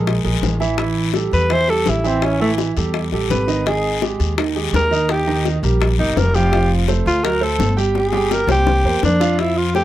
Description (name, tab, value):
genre	Afro-Cuban jazz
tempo	168 BPM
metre	4/4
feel	straight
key	unclear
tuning	A4 = 440 Hz
part	breathy alto saxophone	melody	0.0-9.8 s	A3 to C5	-18 LUFS	equal	none
part	warm concert grand piano	accompaniment	0.0-9.8 s	Eb3 to G5	-22 LUFS	right 6 dB	none
part	upright bass	bass	0.0-9.8 s	F1 to F2	-20 LUFS	equal	none
part	bongos	percussion	0.1-9.8 s	none	-24 LUFS	left 9 dB	none
part	guiro	percussion	0.1-9.8 s	none	-30 LUFS	left 17 dB	none
room	little or no reverb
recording	dry, close 1970s-style studio recording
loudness	-15 LUFS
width	side -13 dB against mid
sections	0.0-9.4 A section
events	alto saxophone solo 0.0-9.4; drum fill 8.0-9.4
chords	0.1 Eadd11; 0.8 A5; 2.2 Asus2; 3.7 Absus2; 5.1 Ebadd9; 6.5 F; 7.2 D7; 8.0 Gm; 8.7 C9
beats	0.07 0.43 | 0.79 1.15 1.51 1.87 | 2.23 2.58 2.94 3.30 | 3.66 4.02 4.38 4.74 | 5.09 5.45 5.81 6.17 | 6.53 6.88 7.24 7.60 | 7.96 8.31 8.67 9.03 | 9.39 9.74